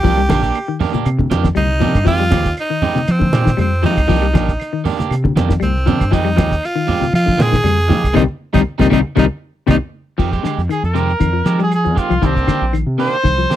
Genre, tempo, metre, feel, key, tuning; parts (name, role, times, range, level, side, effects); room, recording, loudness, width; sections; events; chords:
afrobeat; 118 BPM; 4/4; swing 54% on 16ths; F dorian; A4 = 440 Hz
raspy tenor saxophone; melody; 0.0-9.8 s; C4 to Ab4; -19 LUFS; right 1 dB
clean electric guitar; arpeggios; 0.0-13.5 s; Bb2 to G3; -19 LUFS; left 8 dB
electric guitar at the edge of break-up; stabs; 0.0-13.6 s; Eb3 to G4; -22 LUFS; right 10 dB
deep dub fingered electric bass; bass; 0.0-13.5 s; Bb1 to F3; -17 LUFS; equal
cloth-damped thuddy drum kit; drums; 0.0-13.6 s; crash cymbal, hi-hat, kick drum, snare drum; -18 LUFS; equal
congas; percussion; 0.1-9.8 s; -20 LUFS; right 2 dB
claves; percussion; 0.3-13.4 s; -33 LUFS; right 12 dB
bright trumpet; melody; 10.7-13.6 s; C4 to C5; -19 LUFS; right 1 dB
little or no reverb; dry, close 1970s-style studio recording; -13 LUFS; side -12 dB against mid
0.0-10.2 A section; 10.2-13.6 B section
band accent 8.2-10.2; drum fill 9.7-10.2; trumpet solo 10.2-13.6
0.0 Cm9; 2.1 Fm9; 4.1 Cm9; 6.1 Fm9; 8.2 Cm7; 10.2 Fm9; 12.2 Cm9